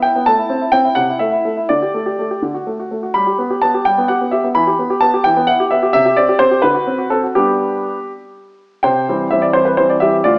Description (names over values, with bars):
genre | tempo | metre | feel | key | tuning
classical-period piano sonatina | 80-88 BPM (dotted quarters) | 6/8 | rubato | G major | A4 = 440 Hz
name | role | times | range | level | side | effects
clear grand piano | solo | 0.0-10.4 s | D2 to B5 | -12 LUFS | equal | none
room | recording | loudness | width
moderate recital hall reverb, RT60 1.6 s | small speaker sound | -13 LUFS | side -28 dB against mid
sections
0.0-8.8 A section; 8.8-10.4 B section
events
none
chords
0.3 Am; 1.0 Am/C; 1.7 Dsus4; 2.4 D; 3.2 G; 4.6 Em; 5.9 C5; 6.6 D7; 7.4 G; 8.8 C